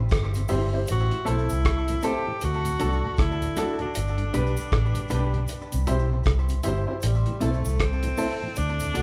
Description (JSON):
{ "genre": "roots reggae", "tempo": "78 BPM", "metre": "4/4", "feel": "swing 60% on 16ths", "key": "A dorian", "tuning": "A4 = 441 Hz", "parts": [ { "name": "mellow tonewheel organ", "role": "accompaniment", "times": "0.0-9.0 s", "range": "D2 to F#4", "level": "-36 LUFS", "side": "equal", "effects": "slow rotary speaker" }, { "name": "vintage muted fingered electric bass", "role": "bass", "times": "0.0-9.0 s", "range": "G1 to D2", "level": "-28 LUFS", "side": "equal", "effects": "none" }, { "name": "cloth-damped thuddy drum kit", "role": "drums", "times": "0.1-9.0 s", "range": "hi-hat, kick drum, rim click", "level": "-30 LUFS", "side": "equal", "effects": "none" }, { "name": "cabasa", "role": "percussion", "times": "0.3-9.0 s", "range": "none", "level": "-46 LUFS", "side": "equal", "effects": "tape echo" }, { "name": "clean electric guitar", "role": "accompaniment", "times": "0.5-9.0 s", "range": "C4 to C5", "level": "-36 LUFS", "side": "equal", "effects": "spring reverb, tape echo" }, { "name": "warm upright piano", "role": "stabs", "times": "0.5-9.0 s", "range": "D4 to D5", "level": "-36 LUFS", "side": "equal", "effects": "none" }, { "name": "clear tenor saxophone", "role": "melody", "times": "0.9-9.0 s", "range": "G3 to G4", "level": "-33 LUFS", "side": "equal", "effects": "none" } ], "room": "moderate large studio reverb, RT60 1.2 s", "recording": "band playing live in one room", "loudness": "-25 LUFS", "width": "mono", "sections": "0.0-9.0 A section", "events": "none", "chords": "0.0 C; 0.9 Am; 2.4 D; 4.0 G; 5.5 C; 7.0 Am" }